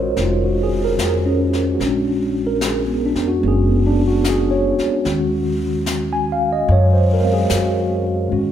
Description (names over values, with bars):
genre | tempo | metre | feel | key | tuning
jazz ballad | 74 BPM | 4/4 | swing 67% on 8ths | unclear | A4 = 439 Hz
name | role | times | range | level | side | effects
mellow tine electric piano | accompaniment | 0.0-8.5 s | Eb3 to Ab5 | -18 LUFS | equal | medium stereo tremolo
upright bass | bass | 0.0-8.5 s | F1 to Ab2 | -20 LUFS | equal | none
jazz brush drum kit | drums | 0.2-8.5 s | brushed snare drum, hi-hat, snare drum | -29 LUFS | left 3 dB | none
room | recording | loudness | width
wet recital hall reverb, RT60 1.4 s | recorded in a church or concert hall | -16 LUFS | side -10 dB against mid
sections
0.0-8.5 A section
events
none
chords
0.0 Bbm11; 1.8 Bb7alt; 5.1 Ebm11